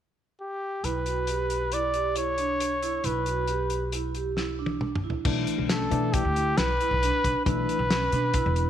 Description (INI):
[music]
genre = progressive instrumental, band music in an uneven meter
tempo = 136 BPM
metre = 5/4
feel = straight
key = unclear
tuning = A4 = 440 Hz
[part]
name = warm trumpet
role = melody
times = 0.4-8.7 s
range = G4 to D5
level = -27 LUFS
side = left 1 dB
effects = none
[part]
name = vibraphone with medium mallets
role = arpeggios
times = 0.8-8.7 s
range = C#4 to G4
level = -32 LUFS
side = right 8 dB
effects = slapback echo
[part]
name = upright bass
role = bass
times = 0.8-8.7 s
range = E1 to B2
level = -30 LUFS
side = equal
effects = none
[part]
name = warm soul drum kit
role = drums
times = 0.8-8.7 s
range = crash cymbal, hi-hat, kick drum, snare drum, toms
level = -30 LUFS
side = left 1 dB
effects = none
[part]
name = barky tine electric piano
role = accompaniment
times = 5.2-7.8 s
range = E3 to D4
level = -32 LUFS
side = left 12 dB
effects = none
[sound]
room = moderate echo chamber reverb, RT60 2.1 s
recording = 1960s-style stereo with parts hard left and right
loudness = -24 LUFS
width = side -10 dB against mid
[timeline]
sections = 0.8-5.3 A section; 5.3-8.7 B section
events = drum fill 4.4-5.3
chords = 0.0 N.C.; 0.8 Em7/B; 7.5 E7sus4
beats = 0.39 | 0.84 1.28 1.72 2.16 2.60 | 3.05 3.49 3.93 4.37 4.81 | 5.26 5.70 6.14 6.58 7.02 | 7.46 7.90 8.35